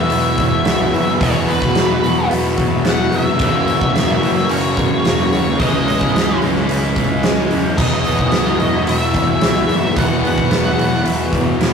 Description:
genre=rock, shoegaze and dream pop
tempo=110 BPM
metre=4/4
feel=straight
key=E lydian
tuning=A4 = 440 Hz
part: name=octave-fuzz lead guitar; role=melody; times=0.0-11.0 s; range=B4 to F#5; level=-21 LUFS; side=left 2 dB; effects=distortion, tape echo
part: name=ethereal airy pad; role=sustained chords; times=0.1-11.7 s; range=E4 to B5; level=-27 LUFS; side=left 1 dB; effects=none
part: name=direct-recorded clean electric guitar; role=arpeggios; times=0.0-11.7 s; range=E3 to E4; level=-28 LUFS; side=right 3 dB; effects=none
part: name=biting overdriven guitar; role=riff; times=0.0-11.7 s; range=E2 to F#4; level=-24 LUFS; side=left 4 dB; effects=none
part: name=crunchy overdriven guitar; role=riff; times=0.0-11.7 s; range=F#2 to E4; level=-25 LUFS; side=right 5 dB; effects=none
part: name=distorted electric guitar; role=riff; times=0.0-11.7 s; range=E2 to C#4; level=-21 LUFS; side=equal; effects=distortion
part: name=fuzz picked electric bass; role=bass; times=0.0-11.7 s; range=E1 to E2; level=-23 LUFS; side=equal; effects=overdrive
part: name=huge arena drum kit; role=drums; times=0.1-11.7 s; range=crash cymbal, hi-hat, kick drum, snare drum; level=-18 LUFS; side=equal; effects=none
room=wet studio reverb, RT60 0.6 s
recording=rough rehearsal-room recording, tube saturation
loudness=-13 LUFS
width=side -6 dB against mid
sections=0.0-11.7 A section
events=none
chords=0.0 Esus2; 3.4 F#7; 5.6 C#madd9; 7.8 Esus2

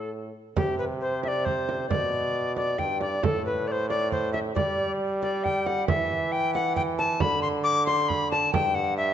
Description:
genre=classical, renaissance-style consort dance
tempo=136 BPM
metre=3/4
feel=straight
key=unclear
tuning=A4 = 438 Hz
part: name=bright alto recorder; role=melody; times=0.0-9.1 s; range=G4 to D6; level=-26 LUFS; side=left 2 dB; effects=none
part: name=brilliant trombone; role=bass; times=0.0-9.1 s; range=G2 to G3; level=-30 LUFS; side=right 3 dB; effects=none
part: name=frame drum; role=percussion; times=0.6-8.7 s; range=none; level=-31 LUFS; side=right 4 dB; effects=none
room=wet recital hall reverb, RT60 1.5 s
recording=nothing above 8.0 kHz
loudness=-24 LUFS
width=side -9 dB against mid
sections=0.6-9.1 A section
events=none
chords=0.0 N.C.; 1.9 G/B; 3.2 Am; 4.6 G5; 5.9 Em; 7.2 Bm/D; 8.5 N.C.

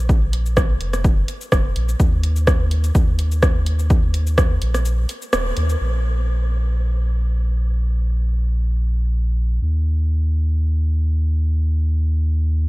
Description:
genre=dub techno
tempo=126 BPM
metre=4/4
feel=swing 54% on 16ths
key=unclear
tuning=A4 = 440 Hz
part: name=warm sub bass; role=bass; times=0.0-12.7 s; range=Eb1 to Eb2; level=-18 LUFS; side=equal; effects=sidechain pumping
part: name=electronic kick drum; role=drums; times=0.1-4.5 s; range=none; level=-17 LUFS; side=equal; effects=overdrive
part: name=punchy analog drum machine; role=drums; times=0.1-5.8 s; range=hi-hat, rim click, shaker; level=-24 LUFS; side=right 1 dB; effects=overdrive
room=little or no reverb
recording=none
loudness=-17 LUFS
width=side -21 dB against mid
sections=0.0-5.8 A section; 5.8-12.7 B section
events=break 4.9-5.8; band accent 5.3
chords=none

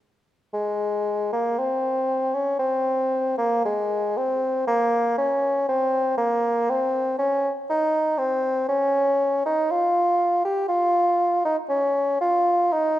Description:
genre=classical, baroque-style fantasia for unaccompanied bassoon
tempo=59 BPM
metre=4/4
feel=rubato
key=unclear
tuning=A4 = 441 Hz
part: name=warm bassoon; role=solo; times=0.5-13.0 s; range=Ab3 to G4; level=-20 LUFS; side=equal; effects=none
room=moderate recital hall reverb, RT60 1.4 s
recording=none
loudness=-20 LUFS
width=side -14 dB against mid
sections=0.5-13.0 A section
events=none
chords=none

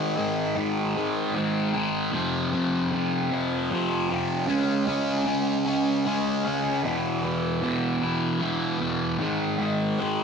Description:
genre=rock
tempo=51 BPM (dotted quarters)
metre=6/8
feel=straight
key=unclear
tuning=A4 = 441 Hz
part: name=fuzz guitar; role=solo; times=0.0-10.2 s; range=E2 to Db4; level=-23 LUFS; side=equal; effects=distortion, phaser
room=wet echo chamber reverb, RT60 1.4 s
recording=none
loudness=-23 LUFS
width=side -6 dB against mid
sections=0.0-9.2 A section; 9.2-10.2 B section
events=none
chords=0.0 Ab5; 2.1 F5; 4.5 Db5; 6.9 E5; 9.2 Ab5

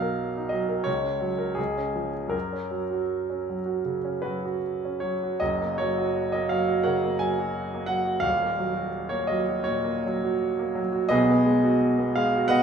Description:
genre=classical, romantic character piece for solo piano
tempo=77-88 BPM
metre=4/4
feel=rubato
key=F# major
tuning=A4 = 441 Hz
part: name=clear grand piano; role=solo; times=0.0-12.6 s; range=D#1 to G#5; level=-23 LUFS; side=right 1 dB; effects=none
room=wet recital hall reverb, RT60 1.5 s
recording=small room ambience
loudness=-23 LUFS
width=side -7 dB against mid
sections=0.0-5.4 A section; 5.4-12.6 A section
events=none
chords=0.0 Bmaj7; 0.9 F#/C#; 1.6 C#; 2.3 F#; 8.3 D#m; 11.1 G#m7/B

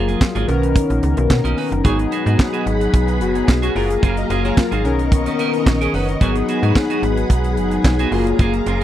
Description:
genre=early-eighties boogie funk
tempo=110 BPM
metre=4/4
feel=straight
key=G# dorian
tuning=A4 = 440 Hz
part: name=chorused polysynth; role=accompaniment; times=0.0-8.8 s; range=D#3 to F#5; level=-19 LUFS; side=left 3 dB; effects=none
part: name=clean electric guitar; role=riff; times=0.0-8.8 s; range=A#3 to B4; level=-25 LUFS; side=right 6 dB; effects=wide subtle chorus
part: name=slap-like FM bass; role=bass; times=0.0-8.8 s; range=F#1 to B2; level=-20 LUFS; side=equal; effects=none
part: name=tight funk drum kit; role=drums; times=0.1-8.8 s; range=handclaps, hi-hat, kick drum, snare drum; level=-16 LUFS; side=right 1 dB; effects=none
part: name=soft string machine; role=sustained chords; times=1.8-8.8 s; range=G#4 to C#6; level=-27 LUFS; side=right 1 dB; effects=ensemble chorus
room=little or no reverb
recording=dry, close 1970s-style studio recording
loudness=-15 LUFS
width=side -12 dB against mid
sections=0.0-8.8 A section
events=none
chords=0.5 Bmaj9; 1.8 G#m7; 3.8 F#maj9; 4.8 Bmaj9; 6.2 G#m7; 8.1 F#maj9

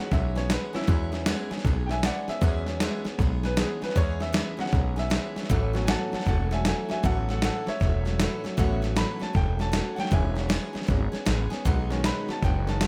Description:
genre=rockabilly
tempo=156 BPM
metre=4/4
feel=swing 64% on 8ths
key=E major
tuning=A4 = 439 Hz
part: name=bright upright piano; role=accompaniment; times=0.0-12.9 s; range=D#3 to B5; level=-35 LUFS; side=equal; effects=none
part: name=picked steel-string acoustic guitar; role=accompaniment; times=0.0-12.9 s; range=A2 to G#4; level=-36 LUFS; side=equal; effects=none
part: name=upright bass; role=bass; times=0.1-12.9 s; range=E1 to E2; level=-30 LUFS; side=equal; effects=none
part: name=dusty soul sampler-style drum kit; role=drums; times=0.1-12.9 s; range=hi-hat, kick drum, snare drum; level=-30 LUFS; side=equal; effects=none
room=light reverb, studio reverb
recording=none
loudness=-26 LUFS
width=mono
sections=0.0-12.9 A section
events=upright piano solo 0.0-12.9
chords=0.0 E6; 5.5 A6; 10.1 E6; 11.7 B6

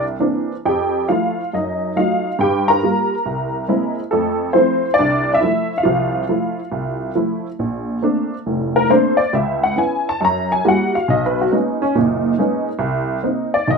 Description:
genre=solo jazz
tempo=138 BPM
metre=4/4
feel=swing 66% on 8ths, rubato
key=F major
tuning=A4 = 441 Hz
part: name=honky-tonk upright piano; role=solo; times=0.0-13.8 s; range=F1 to Bb5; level=-16 LUFS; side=equal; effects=none
room=moderate studio reverb, RT60 0.8 s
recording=minimal, uncompressed stereo recording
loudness=-16 LUFS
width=side -4 dB against mid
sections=0.0-7.6 A section; 7.6-13.8 B section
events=honky-tonk piano solo 7.6-13.8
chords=0.0 C9; 0.7 Fmaj7; 1.5 F7b9/Gb; 2.4 Gm7; 3.3 Caug7; 4.1 Fmaj7; 7.6 Bbmaj9; 9.3 Dbm7; 10.2 Gb7b9; 11.1 Bmaj13; 12.8 Cm7

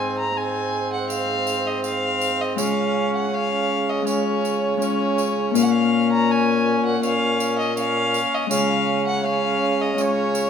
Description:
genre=classical, renaissance-style consort dance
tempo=81 BPM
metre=4/4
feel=straight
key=unclear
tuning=A4 = 441 Hz
part: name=warm violin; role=melody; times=0.0-10.5 s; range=Db5 to Bb5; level=-25 LUFS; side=left 1 dB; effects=none
part: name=Celtic harp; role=accompaniment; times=0.0-10.5 s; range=Ab2 to F4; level=-25 LUFS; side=left 6 dB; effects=none
part: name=warm viola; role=accompaniment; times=0.0-10.5 s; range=C4 to Db4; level=-26 LUFS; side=right 1 dB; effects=none
part: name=mellow bassoon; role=bass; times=0.0-10.5 s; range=Ab2 to Db3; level=-25 LUFS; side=right 2 dB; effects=none
part: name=tambourine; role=percussion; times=1.1-10.5 s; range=none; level=-34 LUFS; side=right 5 dB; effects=none
room=wet stone room reverb, RT60 1.3 s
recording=none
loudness=-19 LUFS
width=side -7 dB against mid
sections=0.0-10.5 A section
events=none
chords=0.0 Ab; 2.6 Db; 5.6 Bbm; 8.5 Db

